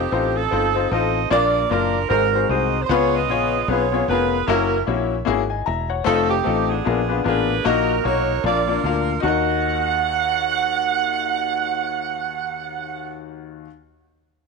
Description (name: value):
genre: uptempo gospel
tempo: 151 BPM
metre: 4/4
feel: swing 59% on 8ths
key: Eb minor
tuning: A4 = 440 Hz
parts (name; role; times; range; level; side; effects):
- clear saxophone section; melody; 0.0-13.2 s; Cb4 to Gb5; -21 LUFS; right 12 dB; none
- fingered electric bass; bass; 0.0-13.7 s; Fb1 to Eb2; -26 LUFS; right 1 dB; none
- clear concert grand piano; accompaniment; 0.1-13.7 s; Eb2 to Bb5; -22 LUFS; left 12 dB; none
room: light reverb, studio ambience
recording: 1960s-style stereo with parts hard left and right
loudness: -18 LUFS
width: side -4 dB against mid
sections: 0.0-9.2 A section; 9.2-12.4 B section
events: none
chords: 0.0 F7; 1.3 Bb; 2.1 Ab7; 2.9 Db7; 4.5 Gb7; 6.1 F7; 6.9 Bb7b9; 7.7 Ebm/Bb; 8.4 Bb; 9.2 Ebm